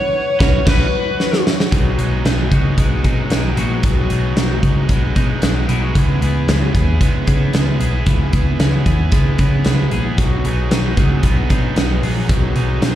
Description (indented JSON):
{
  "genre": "jangly indie pop",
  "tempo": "114 BPM",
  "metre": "4/4",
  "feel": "straight",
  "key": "B major",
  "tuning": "A4 = 441 Hz",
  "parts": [
    { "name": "lead guitar through a small cranked amp", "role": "melody", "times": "0.0-1.4 s", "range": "B4 to C#5", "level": "-20 LUFS", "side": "left 2 dB", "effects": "overdrive, plate reverb, slapback echo, ping-pong delay" },
    { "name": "hollow soft pad", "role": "sustained chords", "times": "0.0-1.7 s", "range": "B4 to C#6", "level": "-28 LUFS", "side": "right 4 dB", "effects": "chorus, plate reverb" },
    { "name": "electric guitar through a small old amp", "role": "arpeggios", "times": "0.0-13.0 s", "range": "E3 to G#4", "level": "-26 LUFS", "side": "left 6 dB", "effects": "plate reverb, slapback echo, ping-pong delay" },
    { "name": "crunchy overdriven guitar", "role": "accompaniment", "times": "0.4-13.0 s", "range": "B2 to B4", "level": "-24 LUFS", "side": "right 5 dB", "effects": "plate reverb, slapback echo" },
    { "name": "vintage muted picked electric bass", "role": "bass", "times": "0.4-13.0 s", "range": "A#1 to C#3", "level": "-17 LUFS", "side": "equal", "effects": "none" },
    { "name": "big rock drum kit", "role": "drums", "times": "0.4-12.9 s", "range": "crash cymbal, hi-hat, kick drum, snare drum", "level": "-18 LUFS", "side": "equal", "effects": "none" }
  ],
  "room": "little or no reverb",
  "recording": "live gig heard through the venue's PA, club reverb",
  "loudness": "-14 LUFS",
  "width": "side -12 dB against mid",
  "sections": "0.0-1.7 A section; 1.7-13.0 B section",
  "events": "band accent 0.0-1.7; drum fill 1.2-1.7",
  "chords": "0.0 Bsus2; 1.7 B6; 6.0 C#m7; 10.2 B6",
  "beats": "0.14 0.67 1.20 | 1.72 2.25 2.78 3.31 | 3.84 4.37 4.90 5.42 | 5.95 6.48 7.01 7.54 | 8.07 8.60 9.12 9.65 | 10.18 10.71 11.24 11.76 | 12.29 12.82"
}